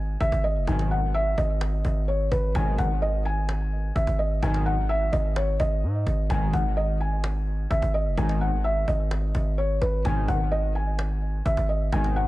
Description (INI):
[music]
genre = hip hop, trap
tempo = 128 BPM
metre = 4/4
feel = half-time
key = G# minor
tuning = A4 = 440 Hz
[part]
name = felt-muted upright piano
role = melody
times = 0.0-12.3 s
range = B4 to G#5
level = -28 LUFS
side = equal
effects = tape echo
[part]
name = distorted 808-style bass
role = bass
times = 0.0-12.3 s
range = F#1 to G#2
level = -25 LUFS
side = equal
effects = distortion
[part]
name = cajon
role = drums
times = 0.2-12.2 s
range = none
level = -34 LUFS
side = equal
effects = vintage 12-bit sampler grit
[part]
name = analog synth brass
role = stabs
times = 0.7-12.3 s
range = B1 to D#3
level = -32 LUFS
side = left 1 dB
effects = chorus, tape echo
[sound]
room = studio reverb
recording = echo-heavy mix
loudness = -22 LUFS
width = side -17 dB against mid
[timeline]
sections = 0.0-12.3 A section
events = none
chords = 0.0 G#m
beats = 0.20 | 0.67 1.14 1.61 2.08 | 2.55 3.02 3.49 3.96 | 4.42 4.89 5.36 5.83 | 6.30 6.77 7.24 7.71 | 8.17 8.64 9.11 9.58 | 10.05 10.52 10.99 11.46 | 11.92